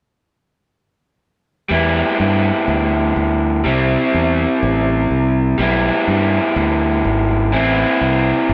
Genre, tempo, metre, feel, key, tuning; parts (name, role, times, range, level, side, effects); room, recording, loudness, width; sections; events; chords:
rock; 62 BPM (dotted quarters); 6/8; straight; E minor; A4 = 439 Hz
raw garage guitar; riff; 1.7-8.5 s; E3 to E4; -18 LUFS; equal; overdrive
growling fingered electric bass; bass; 1.7-8.5 s; G1 to G2; -21 LUFS; equal; overdrive
wet studio ambience, RT60 0.5 s; band playing live in one room; -16 LUFS; mono
1.7-8.5 A section
1.7 Em7; 3.6 C; 5.6 Em7/B; 7.5 Am